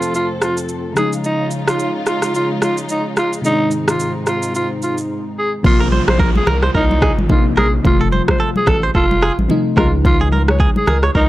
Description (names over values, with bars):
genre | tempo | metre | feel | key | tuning
afrobeats | 109 BPM | 4/4 | swing 58% on 16ths | Bb minor | A4 = 440 Hz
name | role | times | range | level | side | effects
growling alto saxophone | melody | 0.0-11.3 s | Eb4 to Db5 | -20 LUFS | right 1 dB | none
FM electric piano with soft pad layer | accompaniment | 0.0-11.3 s | C3 to F4 | -21 LUFS | left 2 dB | chorus
warm studio string section | sustained chords | 0.0-5.6 s | F2 to A4 | -24 LUFS | equal | none
afro-pop drum kit | drums | 0.0-11.3 s | kick drum, rim click, shaker | -17 LUFS | equal | none
downlifter | sound effects | 0.0-1.2, 5.6-10.0 s | none | -30 LUFS | right 1 dB | none
saturated sub bass | bass | 5.6-11.3 s | F1 to Db2 | -17 LUFS | equal | none
congas | percussion | 5.6-11.0 s | none | -23 LUFS | left 1 dB | none
direct-recorded clean electric guitar | riff | 5.8-11.2 s | Ab4 to Db5 | -22 LUFS | right 3 dB | analog delay
room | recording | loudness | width
digital ambience | dry, gritty hardware recording | -14 LUFS | side -16 dB against mid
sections
0.0-5.6 A section; 5.6-11.3 B section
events
hi-hats muted 5.6-11.3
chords
0.0 F; 1.0 Dbadd9; 3.4 Ab; 5.6 Bbsus2; 7.8 F; 9.8 Dbadd9